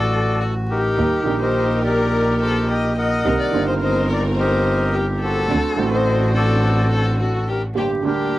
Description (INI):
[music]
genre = tango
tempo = 106 BPM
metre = 4/4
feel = rubato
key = unclear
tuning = A4 = 440 Hz
[part]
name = bandoneon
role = melody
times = 0.0-8.4 s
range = D4 to G5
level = -23 LUFS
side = left 1 dB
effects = none
[part]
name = rich violin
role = second line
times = 0.0-8.4 s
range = F#4 to Eb5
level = -24 LUFS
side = left 3 dB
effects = none
[part]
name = warm upright piano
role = accompaniment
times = 0.0-8.4 s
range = G1 to G4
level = -25 LUFS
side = right 5 dB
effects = none
[part]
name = bright double bass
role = bass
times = 0.0-7.6 s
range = G1 to Eb2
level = -21 LUFS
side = equal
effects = none
[part]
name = rich studio string section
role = stabs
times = 1.0-8.4 s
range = Bb3 to Bb4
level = -27 LUFS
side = right 1 dB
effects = none
[sound]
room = light reverb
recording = dry, close 1970s-style studio recording, vinyl crackle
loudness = -16 LUFS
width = side -16 dB against mid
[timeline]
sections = 0.0-8.4 A section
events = none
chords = 0.0 D; 1.0 Eb; 3.3 Cm7; 5.5 D7; 7.8 Gm